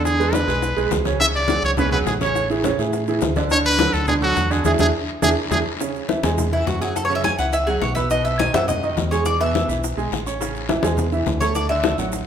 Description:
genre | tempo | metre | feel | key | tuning
latin, salsa | 208 BPM | 4/4 | straight | unclear | A4 = 439 Hz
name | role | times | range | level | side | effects
bright trumpet | melody | 0.0-5.6 s | F#4 to E5 | -21 LUFS | equal | none
bright baby grand piano | accompaniment | 0.0-12.2 s | B2 to C#6 | -23 LUFS | right 5 dB | none
deep dub fingered electric bass | bass | 0.0-12.2 s | A1 to A2 | -25 LUFS | left 1 dB | none
congas | percussion | 0.0-12.3 s | none | -27 LUFS | left 3 dB | none
bongos | percussion | 0.1-12.3 s | none | -29 LUFS | left 8 dB | none
guiro | percussion | 0.1-12.3 s | none | -35 LUFS | left 6 dB | none
maracas | percussion | 0.1-12.3 s | none | -36 LUFS | right 9 dB | none
Cuban tres | melody | 6.5-12.0 s | E4 to G#5 | -22 LUFS | left 1 dB | none
room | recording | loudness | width
wet large studio reverb, RT60 1.5 s | minimal, uncompressed stereo recording | -18 LUFS | side -8 dB against mid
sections
0.0-5.8 A section; 5.8-12.3 B section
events
band accent 4.7-5.8; drum fill 4.9-5.8; Cuban tres solo 5.8-12.3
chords
0.0 E7; 1.2 C#sus4; 2.4 Amaj7; 3.5 Dadd9; 4.7 E7; 5.8 E69; 7.0 F#5; 8.1 B; 9.3 E; 10.4 Amaj7; 11.6 Dadd9

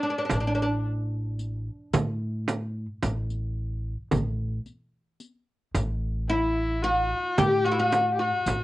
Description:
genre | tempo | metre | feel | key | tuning
Turkish makam ensemble | 110 BPM (eighths) | 10/8 | straight | A makam hicaz | A4 = 439 Hz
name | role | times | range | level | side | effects
oud | melody | 0.0-8.6 s | D4 to G4 | -26 LUFS | left 1 dB | cassette tape
clear kamancheh | second line | 0.0-8.6 s | D4 to G4 | -29 LUFS | left 1 dB | cassette tape
upright bass | bass | 0.3-8.6 s | A1 to A2 | -29 LUFS | equal | none
frame drum | percussion | 0.3-8.6 s | none | -27 LUFS | right 3 dB | none
riq | percussion | 0.3-8.6 s | none | -36 LUFS | left 4 dB | none
room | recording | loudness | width
light reverb | home recording on cassette, nothing above 10.9 kHz | -25 LUFS | side -16 dB against mid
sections
0.0-8.6 A section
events
none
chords
none

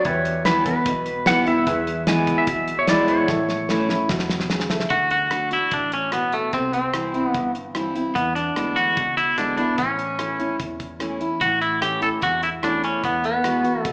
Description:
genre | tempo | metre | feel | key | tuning
honky-tonk and classic country | 148 BPM | 4/4 | straight | unclear | A4 = 439 Hz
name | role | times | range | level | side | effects
pedal steel guitar | second line | 0.0-4.5 s | B4 to G#5 | -22 LUFS | equal | none
bright upright piano | accompaniment | 0.0-4.9 s | E4 to E5 | -31 LUFS | equal | none
picked steel-string acoustic guitar | accompaniment | 0.0-13.9 s | E2 to F#4 | -24 LUFS | equal | none
damped 70s drum kit | drums | 0.0-13.9 s | hi-hat, kick drum, rim click, snare drum | -27 LUFS | equal | none
vintage muted fingered electric bass | bass | 0.1-13.9 s | E1 to E2 | -37 LUFS | equal | none
twangy electric guitar | melody | 4.9-13.9 s | A3 to A4 | -20 LUFS | equal | none
room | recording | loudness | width
wet recital hall reverb, RT60 1.8 s | recorded in a church or concert hall, small speaker sound | -19 LUFS | side -38 dB against mid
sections
0.0-4.9 A section; 4.9-13.9 B section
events
pedal steel guitar solo 0.0-4.9; drum fill 3.3-4.9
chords
0.1 Em; 1.7 E; 3.3 A; 4.9 D; 6.5 C; 8.2 E7; 9.8 A; 13.0 Eadd9

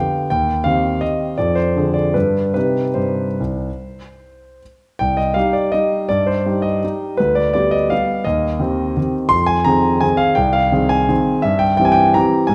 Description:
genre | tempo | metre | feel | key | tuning
classical, piano waltz | 142-182 BPM | 3/4 | rubato | C minor | A4 = 439 Hz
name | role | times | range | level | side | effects
clear concert grand piano | solo | 0.0-12.5 s | C2 to C6 | -17 LUFS | equal | none
room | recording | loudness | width
wet recital hall reverb, RT60 1.6 s | none | -17 LUFS | mono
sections
0.0-5.0 A section; 5.0-12.5 A section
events
none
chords
0.3 Cm/Eb; 1.4 Dm7b5/F; 2.1 G; 2.6 Cm; 7.2 G7/D; 8.3 Cm/Eb; 9.3 Fm7; 11.4 C7/G

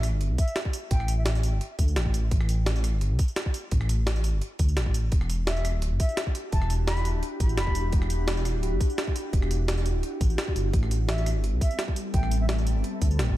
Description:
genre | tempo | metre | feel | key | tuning
liquid drum and bass | 171 BPM | 4/4 | straight | unclear | A4 = 440 Hz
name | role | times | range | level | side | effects
concert flute | melody | 0.0-1.3, 5.5-7.9, 11.1-12.6 s | E5 to B5 | -36 LUFS | equal | tape echo
dark detuned saw bass | bass | 0.0-13.4 s | D1 to D2 | -25 LUFS | equal | none
jungle sampler-style drum kit | drums | 0.0-13.3 s | hi-hat, rim click, snare drum, tambourine | -33 LUFS | right 1 dB | none
electronic kick drum | drums | 0.4-13.3 s | none | -24 LUFS | equal | none
glassy FM pad | sustained chords | 5.9-13.4 s | G3 to A4 | -34 LUFS | equal | ensemble chorus, built-in reverb, sidechain pumping
room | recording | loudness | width
little or no reverb | none | -24 LUFS | side -15 dB against mid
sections
0.0-13.4 A section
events
none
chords
0.0 A7(no3); 5.1 Em9; 10.7 Am9

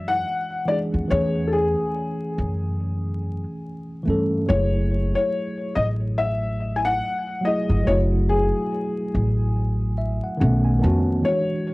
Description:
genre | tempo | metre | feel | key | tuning
lo-fi hip hop | 71 BPM | 4/4 | swing 57% on 16ths | F# dorian | A4 = 439 Hz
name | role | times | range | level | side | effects
felt-muted upright piano | melody | 0.0-11.7 s | G#4 to G#5 | -25 LUFS | left 2 dB | cassette tape, tape echo
tine electric piano | accompaniment | 0.0-11.7 s | D#3 to A5 | -26 LUFS | equal | overdrive, fast stereo tremolo, cassette tape
upright bass | bass | 0.0-11.2 s | F#1 to G2 | -22 LUFS | equal | none
room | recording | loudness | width
light reverb | home recording on cassette, vinyl crackle | -20 LUFS | side -22 dB against mid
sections
0.0-11.7 A section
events
tine electric piano fill 9.6-11.2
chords
0.0 E9; 1.1 Amaj7/E; 4.5 F#m9; 10.4 B9

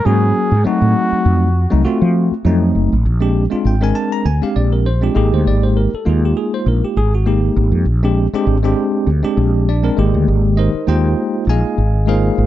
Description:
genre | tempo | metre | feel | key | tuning
jazz | 100 BPM | 4/4 | swing 55% on 16ths | Bb mixolydian from 3.1 s | A4 = 441 Hz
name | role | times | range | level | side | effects
breathy trumpet | melody | 0.0-1.8 s | Gb4 to Ab4 | -20 LUFS | equal | analog delay
bell-like tine electric piano | accompaniment | 0.0-12.5 s | Eb3 to Bb5 | -17 LUFS | left 1 dB | medium stereo tremolo
mellow fretless electric bass | bass | 0.1-12.5 s | Gb1 to F3 | -14 LUFS | equal | analog chorus
room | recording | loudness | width
small room ambience | dark, warm production, nothing above 7.7 kHz | -13 LUFS | side -13 dB against mid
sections
0.0-3.1 A section; 3.1-12.5 B section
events
none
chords
0.0 Ab9sus4; 0.7 F7b9; 3.1 Bb13; 5.2 Fm11/Ab; 7.9 Bb13; 10.0 Fm11/Ab

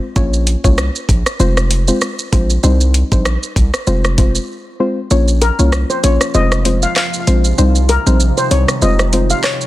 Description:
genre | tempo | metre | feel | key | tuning
dancehall | 97 BPM | 4/4 | swing 56% on 16ths | F minor | A4 = 439 Hz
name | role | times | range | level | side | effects
soft round pluck | accompaniment | 0.0-9.3 s | G3 to Db5 | -18 LUFS | left 1 dB | chorus
hard-hitting 808-style bass | bass | 0.2-9.3 s | F1 to C2 | -14 LUFS | equal | none
island pop drum kit | drums | 0.2-9.7 s | handclaps, hi-hat, kick drum, rim click, shaker | -17 LUFS | equal | vintage 12-bit sampler grit, soft clipping on snare
deep dark ambient pad | sustained chords | 5.9-9.7 s | C3 to F3 | -24 LUFS | right 2 dB | chorus, built-in reverb, sidechain pumping
steel pan | melody | 5.4-9.6 s | Bb4 to F5 | -18 LUFS | left 3 dB | digital delay
room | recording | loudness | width
little or no reverb | dense, heavily limited modern master | -12 LUFS | side -16 dB against mid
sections
0.0-5.1 A section; 5.1-9.7 B section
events
break 4.5-5.1; kick muted 5.1-9.7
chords
0.2 Bbm; 1.4 Fm; 2.6 Cm; 3.9 Fm; 5.1 Bbm; 6.3 Fm; 7.6 Cm; 8.8 Fm

